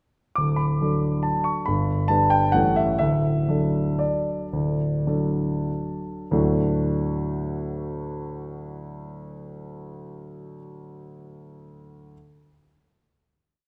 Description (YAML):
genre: classical, piano waltz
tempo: 93-147 BPM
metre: 3/4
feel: rubato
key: D major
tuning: A4 = 444 Hz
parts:
  - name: warm concert grand piano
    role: solo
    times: 0.4-12.1 s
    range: D1 to D6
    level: -25 LUFS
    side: equal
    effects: none
room: wet scoring stage reverb, RT60 1.9 s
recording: none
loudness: -24 LUFS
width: mono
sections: 0.4-6.3 A section; 6.3-10.0 final chord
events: slowing down 2.3-6.3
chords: 0.4 D; 1.7 G; 2.5 A7; 3.0 D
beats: | 0.38 0.81 1.25 | 1.68 2.09 2.54 | 3.01 3.49 4.00 | 4.52 5.07 5.68 | 6.30 6.89 7.52 | 8.14 8.74 9.37